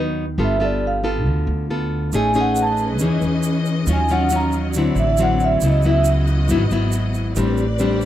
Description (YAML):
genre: bossa nova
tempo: 138 BPM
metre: 4/4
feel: straight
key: unclear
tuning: A4 = 440 Hz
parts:
  - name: nylon-string guitar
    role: accompaniment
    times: 0.0-8.1 s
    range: G#2 to A4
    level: -20 LUFS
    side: left 2 dB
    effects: none
  - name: upright bass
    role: bass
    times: 0.0-8.1 s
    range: G1 to E2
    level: -21 LUFS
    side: equal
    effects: none
  - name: vibraphone with soft mallets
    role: melody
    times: 0.4-6.1 s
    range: D5 to A#5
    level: -20 LUFS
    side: right 1 dB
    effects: none
  - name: rich studio string section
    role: sustained chords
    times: 2.1-8.1 s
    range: F#3 to D#5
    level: -28 LUFS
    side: equal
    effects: none
  - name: egg shaker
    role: percussion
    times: 2.1-8.1 s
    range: none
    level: -33 LUFS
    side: right 10 dB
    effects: none
room: light reverb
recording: dry, close 1970s-style studio recording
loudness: -16 LUFS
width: side -12 dB against mid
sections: 0.0-8.1 A section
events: vibraphone solo 0.0-8.1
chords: 0.4 G9; 2.1 Amaj9#11; 3.9 D#m9; 4.7 D9; 5.6 C#m11; 7.4 Am11